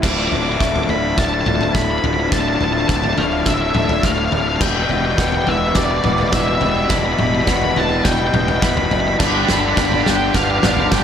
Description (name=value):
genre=post-rock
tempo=105 BPM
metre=4/4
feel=straight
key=D dorian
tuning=A4 = 440 Hz
part: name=octave-fuzz lead guitar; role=melody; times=0.0-11.0 s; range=D5 to D6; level=-21 LUFS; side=right 1 dB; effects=distortion, analog delay
part: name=chorused pulse-width pad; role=sustained chords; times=0.0-11.0 s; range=F4 to B5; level=-28 LUFS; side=right 1 dB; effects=none
part: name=electric guitar through a small old amp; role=arpeggios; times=0.0-11.0 s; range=D2 to D4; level=-24 LUFS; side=left 1 dB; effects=analog delay
part: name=biting overdriven guitar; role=riff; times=0.0-11.0 s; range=D2 to D3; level=-22 LUFS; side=left 6 dB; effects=none
part: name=fuzz fingered electric bass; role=bass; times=0.0-11.0 s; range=D1 to G1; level=-23 LUFS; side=equal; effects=overdrive
part: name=loose indie drum kit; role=drums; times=0.0-11.0 s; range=crash cymbal, kick drum, snare drum, toms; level=-20 LUFS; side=equal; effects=none
part: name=cranked stack guitar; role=riff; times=9.2-11.0 s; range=D4 to G4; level=-22 LUFS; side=right 8 dB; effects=overdrive, analog chorus
room=wet plate reverb, RT60 1.6 s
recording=dreamy mix soaked in reverb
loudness=-14 LUFS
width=side -8 dB against mid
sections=0.0-11.0 A section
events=build-up 0.0-11.0; drum fill 0.0-11.0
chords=0.0 Dmadd9; 4.6 Em7; 9.2 G7